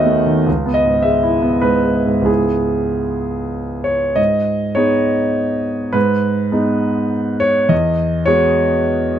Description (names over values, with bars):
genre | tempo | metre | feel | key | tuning
neoclassical minimalist piano | 92-106 BPM | 3/4 | rubato | unclear | A4 = 440 Hz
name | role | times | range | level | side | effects
clear concert grand piano | solo | 0.0-9.2 s | C#2 to F#5 | -14 LUFS | equal | none
room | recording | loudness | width
light reverb | close, detailed microphones | -14 LUFS | side -10 dB against mid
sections
0.0-4.2 A section; 4.2-9.2 B section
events
none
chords
0.5 C#m7; 4.2 G#m; 7.7 Eadd9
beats
| 0.47 1.05 1.65 | 2.28 2.93 3.55 | 4.18 4.77 5.37 | 5.96 6.54 7.12 | 7.71 8.28 8.86